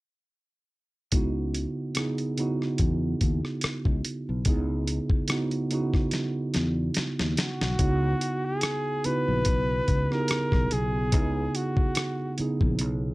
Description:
R&B, neo-soul; 72 BPM; 4/4; swing 55% on 16ths; C# dorian; A4 = 443 Hz
tine electric piano; accompaniment; 1.1-13.1 s; C#3 to G#4; -29 LUFS; right 2 dB
fretless electric bass; bass; 1.1-13.1 s; A#1 to E2; -28 LUFS; equal; analog chorus
boom bap sampler-style drum kit; drums; 1.1-13.0 s; hi-hat, kick drum, rim click, snare drum; -26 LUFS; equal
warm flugelhorn; melody; 7.4-12.4 s; F#4 to B4; -29 LUFS; equal; slapback echo
light reverb; -24 LUFS; side -20 dB against mid
1.1-7.8 A section; 7.8-13.1 B section
drum fill 6.1-7.8
1.1 C#m11

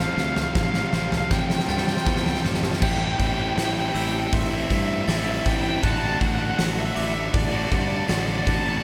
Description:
post-rock; 80 BPM; 4/4; straight; A minor; A4 = 440 Hz
lead guitar through a small cranked amp; melody; 0.0-8.8 s; D5 to A5; -31 LUFS; equal; overdrive, slapback echo, tape echo
hand-pumped harmonium; sustained chords; 0.0-2.8 s; A3 to G5; -43 LUFS; equal
electric guitar through a small old amp; arpeggios; 0.0-8.8 s; A2 to C5; -39 LUFS; equal
glockenspiel with brass mallets; arpeggios; 0.0-8.8 s; D6 to A6; -40 LUFS; equal; slapback echo, tape echo
sludgy distorted guitar; riff; 0.0-8.8 s; F2 to F#4; -30 LUFS; equal; overdrive, slapback echo
fuzz fingered electric bass; bass; 0.0-8.8 s; A1 to G2; -31 LUFS; equal; overdrive
huge arena drum kit; drums; 0.2-8.6 s; crash cymbal, hi-hat, kick drum, snare drum, toms; -28 LUFS; equal
cranked stack guitar; riff; 2.8-8.8 s; A2 to F#4; -35 LUFS; equal; overdrive
moderate scoring stage reverb, RT60 2.1 s; big arena sound; -23 LUFS; mono
0.0-2.8 A section; 2.8-8.8 B section
build-up 0.0-2.8; drum fill 0.0-2.8
0.0 Fadd9/A; 2.8 Am7; 5.8 D7/A

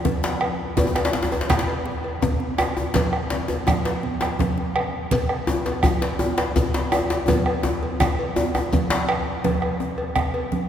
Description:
west african traditional, West African drum ensemble; 111 BPM (dotted quarters); 12/8; straight
congas; percussion; 0.0-10.7 s; -29 LUFS; right 4 dB
bombo; percussion; 0.1-10.3 s; -25 LUFS; right 2 dB
cowbell; percussion; 0.1-10.5 s; -30 LUFS; left 2 dB
djembe; percussion; 0.1-10.7 s; -29 LUFS; left 3 dB
djembe; percussion; 0.2-9.1 s; -25 LUFS; left 2 dB
shekere; percussion; 0.8-8.9 s; -36 LUFS; left 2 dB
wet cathedral reverb, RT60 4.9 s; recorded in a church or concert hall; -20 LUFS; side -9 dB against mid
0.8-9.4 A section; 9.4-10.7 B section
drum fill 0.0-0.8, 7.3-9.4

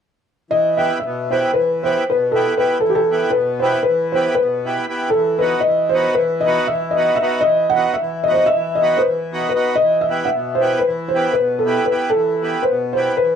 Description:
balkan folk; 232 BPM (eighths); 9/8; straight; E harmonic minor; A4 = 440 Hz
felt-muted upright piano; melody; 0.5-13.4 s; G4 to F#5; -16 LUFS; equal
accordion; accompaniment; 0.5-13.4 s; B2 to B4; -21 LUFS; equal
wet small room reverb, RT60 0.5 s; dark, warm production; -15 LUFS; side -8 dB against mid
0.5-13.4 A section
0.5 Em; 5.1 B/E; 9.8 Em

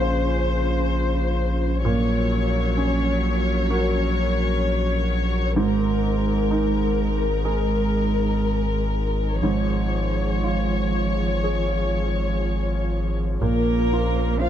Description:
neoclassical piano and strings; 59-65 BPM; 4/4; rubato; Bb minor; A4 = 440 Hz
muted chamber violin section; melody; 0.0-14.5 s; Bb4 to F5; -27 LUFS; left 4 dB
muted cello; second line; 0.0-14.5 s; Db3 to F4; -29 LUFS; right 5 dB
felt-muted upright piano; accompaniment; 0.0-14.5 s; Ab2 to Db5; -26 LUFS; right 3 dB
airy breathy pad; sustained chords; 0.0-14.5 s; Db4 to Db5; -32 LUFS; equal; chorus
saturated sub bass; bass; 0.0-14.5 s; Ab1 to Bb1; -24 LUFS; left 1 dB
little or no reverb; dark, warm production; -20 LUFS; side -10 dB against mid
0.0-13.4 A section; 13.4-14.5 B section
0.0 Bbmadd9; 1.8 Gb/Bb; 5.6 Absus2; 9.4 Db/Ab; 13.4 Bbmadd9

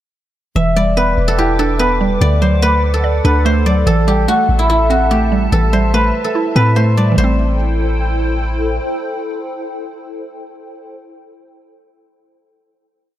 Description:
hip hop, trap; 145 BPM; 4/4; half-time; A dorian; A4 = 440 Hz
guzheng; melody; 0.6-9.2 s; E4 to E5; -17 LUFS; equal
mallet-like synth pluck; accompaniment; 0.6-11.0 s; D3 to D5; -18 LUFS; right 2 dB; chorus
hollow soft pad; sustained chords; 0.6-10.9 s; E4 to D6; -24 LUFS; left 1 dB; ensemble chorus
warm 808-style bass; bass; 0.6-8.8 s; E1 to A2; -15 LUFS; equal
light reverb; -12 LUFS; side -12 dB against mid
0.6-7.2 breakdown; 7.2-10.5 final chord
0.6 Em7; 2.2 D; 3.9 Am7

